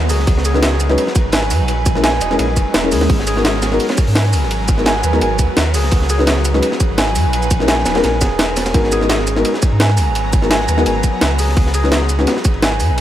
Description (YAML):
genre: liquid drum and bass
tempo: 170 BPM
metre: 4/4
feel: swing 53% on 16ths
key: G# minor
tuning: A4 = 440 Hz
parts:
  - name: shimmering ambient pad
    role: sustained chords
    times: 0.0-13.0 s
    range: F#3 to A#5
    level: -23 LUFS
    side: equal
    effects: chorus, built-in reverb
  - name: concert harp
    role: arpeggios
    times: 0.0-13.0 s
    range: G#4 to G#5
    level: -22 LUFS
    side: right 2 dB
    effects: dub echo
  - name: warm sub bass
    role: bass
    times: 0.0-13.0 s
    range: E1 to G#2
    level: -18 LUFS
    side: equal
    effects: none
  - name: crunchy breakbeat drum kit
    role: drums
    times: 0.1-13.0 s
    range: hi-hat, ride cymbal, snare drum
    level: -24 LUFS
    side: equal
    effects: high-pass filter on cymbals, high-pass filter on hats, high-pass filter on snare, high-pass filter on room
  - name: jungle sampler-style drum kit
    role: drums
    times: 0.1-13.0 s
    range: hi-hat, shaker, snare drum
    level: -19 LUFS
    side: equal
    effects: none
  - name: electronic kick drum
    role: drums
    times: 0.3-12.5 s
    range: none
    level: -15 LUFS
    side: equal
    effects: none
  - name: felt-muted upright piano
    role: accompaniment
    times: 0.5-12.3 s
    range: G#3 to B4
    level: -19 LUFS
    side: left 2 dB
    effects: dub echo
room: light reverb, small room ambience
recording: none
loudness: -13 LUFS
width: side -12 dB against mid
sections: 0.0-8.7 A section; 8.7-13.0 A section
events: drop 0.0-8.7, 8.7-13.0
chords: 0.0 G#m7; 1.7 A#m7b5; 3.1 G#m9; 7.3 A#m7b5; 8.7 G#m9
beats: | 0.27 0.63 0.98 1.33 | 1.69 2.04 2.39 2.74 | 3.10 3.45 3.80 4.16 | 4.51 4.86 5.21 5.57 | 5.92 6.27 6.63 6.98 | 7.33 7.68 8.04 8.39 | 8.74 9.10 9.45 9.80 | 10.15 10.51 10.86 11.21 | 11.57 11.92 12.27 12.63 | 12.98